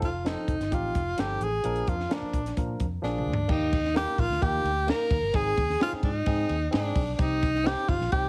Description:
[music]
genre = uptempo 1960s-style soul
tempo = 130 BPM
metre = 4/4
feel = straight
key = Eb major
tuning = A4 = 440 Hz
[part]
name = breathy tenor saxophone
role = melody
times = 0.0-8.3 s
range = D4 to Bb4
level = -30 LUFS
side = equal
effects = none
[part]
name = barky tine electric piano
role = accompaniment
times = 0.0-8.3 s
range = F3 to Bb4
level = -38 LUFS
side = equal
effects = none
[part]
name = vintage muted fingered electric bass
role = bass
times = 0.0-8.3 s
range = F1 to Bb2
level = -34 LUFS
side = equal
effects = none
[part]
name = compact cocktail drum kit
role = drums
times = 0.0-8.2 s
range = crash cymbal, hi-hat, kick drum, ride cymbal, snare drum, toms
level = -32 LUFS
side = equal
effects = none
[sound]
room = light reverb, studio reverb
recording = heavily compressed radio sound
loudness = -27 LUFS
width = mono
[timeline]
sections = 0.0-3.5 A section; 3.5-8.3 B section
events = drum fill 3.0-3.5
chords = 0.0 F7; 1.6 Bb; 3.5 Eb; 5.3 Ab; 7.2 Cm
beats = 0.26 0.72 1.18 | 1.64 2.11 2.57 3.03 | 3.49 3.96 4.42 4.88 | 5.34 5.81 6.27 6.73 | 7.19 7.66 8.12

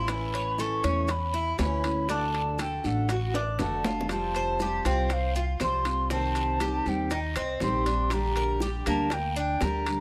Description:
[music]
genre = latin, Cuban son and guajira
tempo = 120 BPM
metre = 4/4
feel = straight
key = G minor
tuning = A4 = 440 Hz
[part]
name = mellow hollow jazz flute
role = melody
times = 0.0-10.0 s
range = Eb5 to C#6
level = -32 LUFS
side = equal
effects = none
[part]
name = picked steel-string acoustic guitar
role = accompaniment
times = 0.0-10.0 s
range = C3 to G4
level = -34 LUFS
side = equal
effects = none
[part]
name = Cuban tres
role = arpeggios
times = 0.0-10.0 s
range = Bb3 to C#5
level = -36 LUFS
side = equal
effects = none
[part]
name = upright bass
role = bass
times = 0.0-10.0 s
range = F1 to E2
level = -33 LUFS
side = equal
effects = none
[part]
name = bongos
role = percussion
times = 0.1-9.9 s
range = none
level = -39 LUFS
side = equal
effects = none
[part]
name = guiro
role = percussion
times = 0.1-10.0 s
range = none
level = -47 LUFS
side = equal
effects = none
[part]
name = maracas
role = percussion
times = 0.1-10.0 s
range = none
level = -51 LUFS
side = equal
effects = none
[part]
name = timbales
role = percussion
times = 0.1-10.0 s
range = none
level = -38 LUFS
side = equal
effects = none
[sound]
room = light reverb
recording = close, detailed microphones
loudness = -28 LUFS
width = mono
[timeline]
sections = 0.0-10.0 A section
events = drum fill 3.3-4.1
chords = 0.1 A; 2.1 D; 4.1 Fadd9; 6.1 Cm; 8.1 Gm/Bb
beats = | 0.08 0.58 1.09 1.59 | 2.09 2.59 3.09 3.59 | 4.09 4.60 5.10 5.60 | 6.10 6.60 7.10 7.61 | 8.11 8.61 9.11 9.61

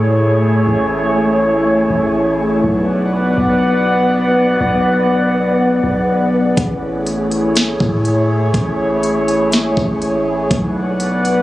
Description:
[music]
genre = hip hop, atmospheric cloud-rap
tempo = 122 BPM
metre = 4/4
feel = half-time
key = A major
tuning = A4 = 440 Hz
[part]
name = warbly tape-like pad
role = sustained chords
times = 0.0-11.4 s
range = A3 to F#5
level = -15 LUFS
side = equal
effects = chorus, built-in reverb, sidechain pumping
[part]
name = long sustained 808-style bass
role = bass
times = 0.0-11.4 s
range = A1 to A2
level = -19 LUFS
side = equal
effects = none
[part]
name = wind-like tuned noise texture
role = texture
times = 0.0-11.4 s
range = A3 to D5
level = -23 LUFS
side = equal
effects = built-in reverb
[part]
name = trap drum kit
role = drums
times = 6.6-11.4 s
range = hi-hat, kick drum, snare drum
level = -18 LUFS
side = equal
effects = overdrive, vintage 12-bit sampler grit
[sound]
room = digital ambience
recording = recorded on a phone in the room, club ambience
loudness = -13 LUFS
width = side -16 dB against mid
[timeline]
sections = 0.0-11.4 A section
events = none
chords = 0.0 Amaj7; 2.6 Bm; 6.6 Amaj7; 10.5 Bm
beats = 0.18 | 0.67 1.16 1.66 2.15 | 2.64 3.13 3.62 4.11 | 4.61 5.10 5.59 6.08 | 6.57 7.07 7.56 8.05 | 8.54 9.03 9.52 10.02 | 10.51 11.00

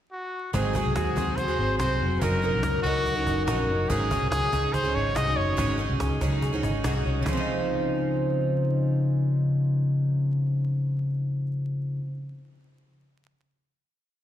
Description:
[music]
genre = jangly indie pop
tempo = 143 BPM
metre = 4/4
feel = straight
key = Db major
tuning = A4 = 440 Hz
[part]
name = bright trumpet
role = melody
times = 0.1-5.8 s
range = Gb4 to Eb5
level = -28 LUFS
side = left 1 dB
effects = none
[part]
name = picked twelve-string acoustic guitar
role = accompaniment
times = 0.5-12.2 s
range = Ab2 to Bb4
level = -31 LUFS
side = right 4 dB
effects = none
[part]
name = twelve-string electric guitar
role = arpeggios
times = 0.5-12.2 s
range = Ab2 to Bb4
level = -27 LUFS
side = left 2 dB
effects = none
[part]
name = vintage muted fingered electric bass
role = bass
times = 0.5-12.0 s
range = F1 to Eb2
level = -29 LUFS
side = equal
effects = none
[part]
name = cajon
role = drums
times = 0.5-7.4 s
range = none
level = -34 LUFS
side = equal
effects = none
[sound]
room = wet concert hall reverb, RT60 2.0 s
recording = recorded in a church or concert hall, vinyl crackle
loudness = -23 LUFS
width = side -11 dB against mid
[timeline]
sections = 0.0-0.5 pickup bar; 0.5-7.3 bridge; 7.3-10.6 final chord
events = none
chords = 0.0 N.C.; 0.5 Ab7; 2.2 Gb6; 3.9 Ab7sus4; 7.3 Dbmaj9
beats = 0.11 | 0.54 0.96 1.38 1.80 | 2.22 2.64 3.06 3.48 | 3.90 4.32 4.74 5.16 | 5.58 6.00 6.42 6.84 | 7.26 7.68 8.10 8.53 | 8.95 9.37 9.79 10.21

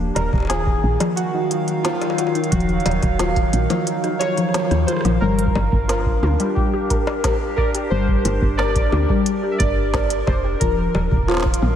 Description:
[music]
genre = IDM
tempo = 89 BPM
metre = 4/4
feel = straight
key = unclear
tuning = A4 = 440 Hz
[part]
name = warbly tape-like pad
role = sustained chords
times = 0.0-11.8 s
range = Eb3 to F5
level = -24 LUFS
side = equal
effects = chorus, built-in reverb, phaser
[part]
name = woody FM bass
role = bass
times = 0.0-11.8 s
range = Eb1 to Eb2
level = -21 LUFS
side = equal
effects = none
[part]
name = warbly lo-fi synth keys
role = melody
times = 0.1-11.8 s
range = F4 to E5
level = -25 LUFS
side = right 1 dB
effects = chorus, phaser, diffuse ambient delay
[part]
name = organic electronic drum kit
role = drums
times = 0.2-11.8 s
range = bongos, hi-hat, rim click, snare drum, toms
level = -27 LUFS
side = left 1 dB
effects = none
[part]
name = electronic kick drum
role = drums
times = 0.3-11.6 s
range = none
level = -22 LUFS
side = equal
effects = none
[part]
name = warbly dusty pluck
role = arpeggios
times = 0.5-11.4 s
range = F3 to D5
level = -25 LUFS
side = left 3 dB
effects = analog chorus, ping-pong delay
[sound]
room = moderate lush hall reverb, RT60 2.9 s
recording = dreamy mix soaked in reverb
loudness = -17 LUFS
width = side -9 dB against mid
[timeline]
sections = 0.0-5.2 A section; 5.2-11.8 B section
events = filter sweep on synth pluck 0.0-5.2; drum fill 3.9-5.2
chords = 0.0 Ebmadd9; 5.2 Gm; 10.6 Ebmadd9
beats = 0.50 1.17 1.85 | 2.52 3.19 3.87 4.54 | 5.22 5.89 6.57 7.24 | 7.91 8.59 9.26 9.94 | 10.61 11.28

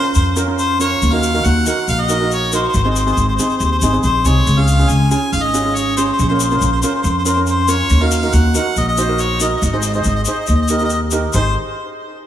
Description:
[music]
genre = calypso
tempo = 140 BPM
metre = 4/4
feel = straight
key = Ab major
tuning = A4 = 440 Hz
[part]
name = bright harmonica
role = melody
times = 0.0-11.5 s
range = C5 to Ab5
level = -19 LUFS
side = left 2 dB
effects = diffuse ambient delay
[part]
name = steel pan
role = accompaniment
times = 0.0-11.5 s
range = C4 to C5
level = -20 LUFS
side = right 3 dB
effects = none
[part]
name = tube shaker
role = percussion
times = 0.1-11.5 s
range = none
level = -26 LUFS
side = left 6 dB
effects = none
[part]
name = upright bass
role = bass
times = 0.2-11.5 s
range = Ab1 to F2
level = -16 LUFS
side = equal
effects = none
[sound]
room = moderate church reverb, RT60 3.2 s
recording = dreamy mix soaked in reverb, small room ambience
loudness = -13 LUFS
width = side -11 dB against mid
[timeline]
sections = 0.0-11.3 A section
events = none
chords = 0.0 Bbmadd9; 1.0 Ebm; 2.7 Ab; 4.5 Db; 6.2 Bbm; 7.9 Ebm; 9.6 Ab; 10.5 Eb; 11.3 Ab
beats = 0.16 0.59 | 1.02 1.45 1.88 2.31 | 2.75 3.18 3.61 4.04 | 4.47 4.90 5.33 5.76 | 6.19 6.62 7.05 7.48 | 7.91 8.34 8.77 9.19 | 9.62 10.05 10.48 10.91 | 11.34

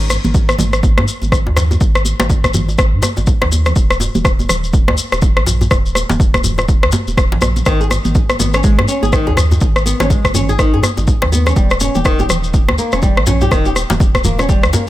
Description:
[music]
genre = afro house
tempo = 123 BPM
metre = 4/4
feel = swing 59% on 16ths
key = G# harmonic minor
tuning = A4 = 440 Hz
[part]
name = warm sub bass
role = bass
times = 0.0-14.7 s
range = D#1 to G#2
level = -18 LUFS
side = equal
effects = tube saturation, sidechain pumping
[part]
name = shekere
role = percussion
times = 0.0-14.8 s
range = none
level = -24 LUFS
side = left 4 dB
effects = none
[part]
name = afro-pop drum kit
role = drums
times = 0.1-14.7 s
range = rim click, toms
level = -18 LUFS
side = left 2 dB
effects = studio ambience
[part]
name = congas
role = percussion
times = 0.1-14.9 s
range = none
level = -23 LUFS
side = right 3 dB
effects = none
[part]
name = djembe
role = percussion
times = 0.1-14.9 s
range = none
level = -20 LUFS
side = left 1 dB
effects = none
[part]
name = electronic kick drum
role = drums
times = 0.3-14.6 s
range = none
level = -14 LUFS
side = equal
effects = studio ambience
[part]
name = flamenco guitar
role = arpeggios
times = 7.7-14.9 s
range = D#3 to G#4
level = -19 LUFS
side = left 1 dB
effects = sidechain pumping, digital delay
[sound]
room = small room ambience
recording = none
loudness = -11 LUFS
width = side -15 dB against mid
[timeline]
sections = 0.0-14.9 A section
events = none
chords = 0.0 G#5; 3.8 D#5; 7.7 G#5; 11.6 D#7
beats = 0.35 0.83 1.32 | 1.81 2.30 2.79 3.27 | 3.76 4.25 4.74 5.22 | 5.71 6.20 6.69 7.17 | 7.66 8.15 8.64 9.13 | 9.61 10.10 10.59 11.08 | 11.57 12.05 12.54 13.03 | 13.52 14.01 14.49

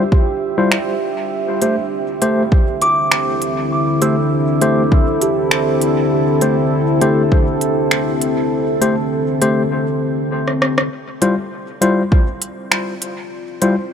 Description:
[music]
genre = ambient dub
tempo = 100 BPM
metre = 4/4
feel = swing 54% on 16ths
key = D minor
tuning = A4 = 440 Hz
[part]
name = deep dark ambient pad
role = sustained chords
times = 0.0-13.9 s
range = D3 to E5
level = -18 LUFS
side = equal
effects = chorus, built-in reverb
[part]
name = kalimba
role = arpeggios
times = 0.0-7.8 s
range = G4 to E6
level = -23 LUFS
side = right 2 dB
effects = dub echo
[part]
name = electronic kick drum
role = drums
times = 0.1-7.4, 12.1-12.2 s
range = none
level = -13 LUFS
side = equal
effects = overdrive
[part]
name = tine electric piano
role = stabs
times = 0.6-13.7 s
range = G3 to C5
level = -20 LUFS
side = left 2 dB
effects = medium tremolo, dub echo
[part]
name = organic electronic drum kit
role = drums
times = 0.7-13.7 s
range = finger snaps, hi-hat, rim click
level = -19 LUFS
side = right 1 dB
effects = overdrive, dub echo
[sound]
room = moderate huge ambient reverb, RT60 6.5 s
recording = none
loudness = -14 LUFS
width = side -7 dB against mid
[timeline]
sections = 0.0-10.9 A section; 10.9-13.9 A section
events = drum fill 10.5-10.9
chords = 0.0 Dm11; 1.3 Am7/D; 10.9 Dm11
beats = 0.12 0.72 | 1.32 1.92 2.52 3.12 | 3.72 4.32 4.92 5.52 | 6.12 6.72 7.32 7.92 | 8.52 9.12 9.72 10.32 | 10.92 11.52 12.12 12.72 | 13.32 13.92

